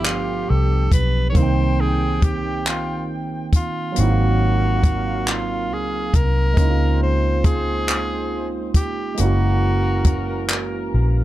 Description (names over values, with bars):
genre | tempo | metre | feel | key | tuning
slow six-eight R&B | 46 BPM (dotted quarters) | 6/8 | straight | Ab major | A4 = 443 Hz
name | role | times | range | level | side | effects
breathy tenor saxophone | melody | 0.0-10.5 s | F4 to Db5 | -26 LUFS | left 1 dB | none
barky tine electric piano | accompaniment | 0.0-11.2 s | Eb3 to G5 | -25 LUFS | right 6 dB | overdrive, wide subtle chorus
warm horn section | stabs | 0.0-11.2 s | D3 to G5 | -32 LUFS | left 2 dB | tape echo
vintage muted fingered electric bass | bass | 0.0-11.2 s | Gb1 to Db2 | -20 LUFS | left 1 dB | none
compact cocktail drum kit | drums | 0.0-10.7 s | handclaps, hi-hat, kick drum | -18 LUFS | equal | none
room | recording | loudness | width
little or no reverb | dark, warm production | -17 LUFS | side -14 dB against mid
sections
0.0-11.2 A section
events
none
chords
0.0 G7; 1.4 Cm7; 4.0 Ab13; 6.6 Db69; 9.2 Gb9